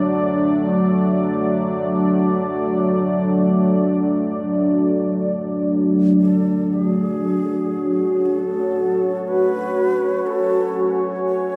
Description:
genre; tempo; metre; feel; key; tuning
dark ambient drone; free time; none; none; F# minor; A4 = 441 Hz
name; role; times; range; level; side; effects
deep dark ambient pad; sustained chords; 0.0-11.6 s; F#3 to G#5; -19 LUFS; equal; chorus, built-in reverb
breathy hollow shakuhachi; melody; 6.2-11.6 s; G#4 to C#5; -32 LUFS; equal; diffuse ambient delay
room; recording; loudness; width
wet huge ambient reverb, RT60 8.3 s; none; -19 LUFS; mono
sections
0.0-6.2 A section; 6.2-11.6 B section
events
fade-in on shakuhachi 6.2-11.6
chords
0.0 D/F#; 6.2 F#madd9

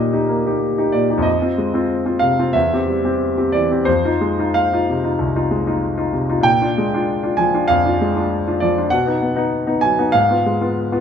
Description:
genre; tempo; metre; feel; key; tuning
classical, romantic character piece for solo piano; 82-100 BPM; 4/4; rubato; unclear; A4 = 443 Hz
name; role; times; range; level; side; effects
clear grand piano; solo; 0.0-11.0 s; C2 to Ab5; -15 LUFS; equal; none
room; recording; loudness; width
moderate large studio reverb, RT60 1.3 s; nothing above 11.0 kHz; -15 LUFS; side -8 dB against mid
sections
0.0-11.0 A section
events
none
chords
0.0 Eb; 1.3 Fm7; 2.6 C/E; 3.9 Fm7; 6.5 Bb7 (rootless); 8.9 B; 10.1 Fdim/Ab

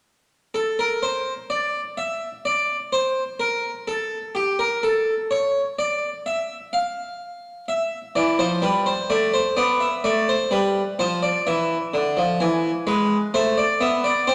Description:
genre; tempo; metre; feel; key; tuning
classical, baroque-style two-part invention for harpsichord; 63 BPM; 4/4; straight; unclear; A4 = 442 Hz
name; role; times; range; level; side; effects
harpsichord; solo; 0.5-14.3 s; D3 to G#5; -22 LUFS; equal; none
room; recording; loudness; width
wet recital hall reverb, RT60 1.6 s; none; -23 LUFS; mono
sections
0.1-14.3 A section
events
none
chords
0.1 N.C.; 7.7 Am/E; 9.6 Bm7b5; 11.5 E7; 13.3 Am

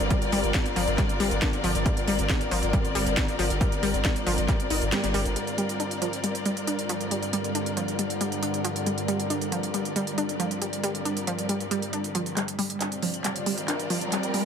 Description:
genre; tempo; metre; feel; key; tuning
driving peak-time techno; 137 BPM; 4/4; straight; G minor; A4 = 445 Hz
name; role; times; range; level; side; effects
saturated sub bass; bass; 0.0-5.4 s; G1; -30 LUFS; equal; tube saturation, sidechain pumping, low-pass filter
deep dark ambient pad; drone; 0.0-12.4 s; G2 to D3; -33 LUFS; right 1 dB; chorus, built-in reverb, sidechain pumping
techno drum kit; drums; 0.0-14.4 s; handclaps, hi-hat, snare drum; -31 LUFS; right 2 dB; sidechain pumping on hats
warm symphonic string section; texture; 0.0-14.4 s; G3 to D5; -30 LUFS; left 2 dB; sidechain pumping
analog pluck; riff; 0.1-14.4 s; F3 to Eb4; -30 LUFS; equal; chorus, sidechain pumping, dub echo
electronic kick drum; drums; 0.1-4.6 s; none; -26 LUFS; equal; none
riser; sound effects; 13.2-14.4 s; none; -34 LUFS; right 1 dB; none
room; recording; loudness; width
moderate lush hall reverb, RT60 2.2 s; none; -24 LUFS; side -7 dB against mid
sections
0.0-5.4 A section; 5.4-12.4 B section; 12.4-14.4 C section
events
drop 0.0-5.4; kick drops out 4.9-5.4; band accent 4.9; build-up 12.4-14.4; drum fill 12.4-14.4; riser 13.2-14.4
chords
0.0 Gm

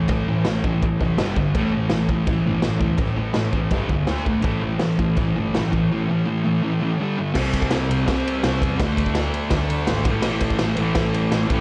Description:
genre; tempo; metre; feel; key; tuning
garage rock duo or trio; 166 BPM; 4/4; straight; unclear; A4 = 441 Hz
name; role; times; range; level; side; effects
thick fuzz guitar; riff; 0.0-11.6 s; G2 to D4; -24 LUFS; equal; distortion
warm double bass; bass; 0.0-11.6 s; F1 to E2; -30 LUFS; equal; none
raw garage drum kit; drums; 0.1-11.6 s; crash cymbal, kick drum, ride cymbal, snare drum; -26 LUFS; equal; none
room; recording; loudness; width
moderate studio reverb, RT60 0.6 s; cassette tape; -21 LUFS; mono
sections
0.0-7.3 A section; 7.3-11.6 B section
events
none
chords
0.0 A5; 1.2 G5; 1.6 A5; 3.7 G5; 4.1 D5; 4.5 A5; 7.0 G5; 7.3 C5; 8.8 D5; 10.1 A5

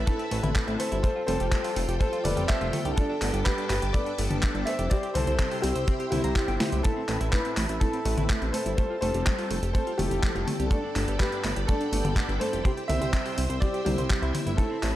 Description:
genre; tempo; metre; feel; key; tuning
italo disco; 124 BPM; 4/4; straight; C major; A4 = 439 Hz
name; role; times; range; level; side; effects
clear grand piano; melody; 0.0-15.0 s; D4 to E5; -31 LUFS; equal; tape echo
string machine, full ensemble; sustained chords; 0.0-15.0 s; F4 to E6; -38 LUFS; equal; phaser, ensemble chorus
chorused synth bass; bass; 0.0-14.9 s; F1 to C2; -29 LUFS; equal; none
direct-recorded clean electric guitar; arpeggios; 0.1-14.9 s; A3 to Bb5; -36 LUFS; right 3 dB; tape echo
mellow synth brass; stabs; 0.1-15.0 s; G2 to C5; -35 LUFS; left 1 dB; chorus, phaser
clean 12-bit digital drum machine; drums; 0.1-14.9 s; handclaps, hi-hat, snare drum, toms; -32 LUFS; left 1 dB; overdrive
kick drum; drums; 0.1-14.7 s; none; -25 LUFS; equal; none
room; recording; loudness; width
small room ambience; dry, gritty hardware recording, transformer saturation; -24 LUFS; side -14 dB against mid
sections
0.0-15.0 A section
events
drum fill 6.6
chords
0.0 Amadd9; 1.0 Fadd9; 3.0 Gadd9; 4.9 C; 6.8 Amadd9; 8.8 Fadd9; 12.7 C

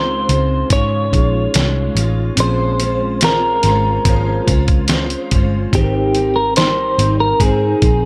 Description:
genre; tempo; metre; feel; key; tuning
indie pop, bedroom pop; 72 BPM; 4/4; straight; unclear; A4 = 442 Hz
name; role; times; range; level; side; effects
clean electric guitar; melody; 0.0-8.1 s; G4 to Db5; -20 LUFS; equal; analog chorus, tape echo
mellow tine electric piano; accompaniment; 0.0-8.1 s; C4 to G5; -28 LUFS; equal; none
picked steel-string acoustic guitar; accompaniment; 0.0-8.1 s; Ab2 to C5; -25 LUFS; equal; ensemble chorus, vibrato effect
vintage muted picked electric bass; bass; 0.0-8.1 s; G1 to Ab2; -21 LUFS; equal; none
trip hop sampler-style drum kit; drums; 0.3-8.0 s; hi-hat, kick drum, snare drum; -19 LUFS; equal; none
room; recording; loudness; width
light reverb, digital ambience; none; -15 LUFS; mono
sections
0.0-8.1 A section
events
none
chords
0.0 Dbmaj7; 2.4 Bbm9; 5.7 Abmaj7

